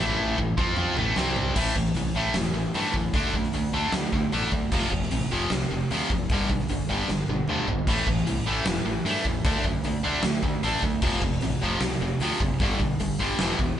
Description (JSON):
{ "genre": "hard rock", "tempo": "152 BPM", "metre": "4/4", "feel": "straight", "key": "A minor", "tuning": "A4 = 443 Hz", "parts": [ { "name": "distorted electric guitar", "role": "riff", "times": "0.0-13.8 s", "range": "E2 to F4", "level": "-25 LUFS", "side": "equal", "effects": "overdrive" }, { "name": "fuzz fingered electric bass", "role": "bass", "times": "0.0-13.7 s", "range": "E1 to G2", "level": "-31 LUFS", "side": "equal", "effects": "overdrive" }, { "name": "huge arena drum kit", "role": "drums", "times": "0.4-13.7 s", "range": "crash cymbal, hi-hat, kick drum, snare drum, toms", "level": "-28 LUFS", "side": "equal", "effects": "none" } ], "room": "light reverb", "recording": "band playing live in one room, nothing above 10.4 kHz", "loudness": "-23 LUFS", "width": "side -10 dB against mid", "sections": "0.0-1.6 A section; 1.6-13.8 B section", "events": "drum fill 0.0-1.6, 7.1-7.9", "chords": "0.0 Am; 1.2 C5; 1.6 A5; 3.1 D5; 4.7 F5; 6.3 G5; 7.9 A5; 9.4 D5; 11.0 F5; 12.6 G", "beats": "0.39 0.78 1.17 | 1.57 1.96 2.35 2.75 | 3.14 3.54 3.93 4.32 | 4.72 5.11 5.51 5.90 | 6.29 6.69 7.08 7.48 | 7.87 8.27 8.66 9.05 | 9.45 9.84 10.24 10.63 | 11.02 11.42 11.81 12.21 | 12.60 13.00 13.39" }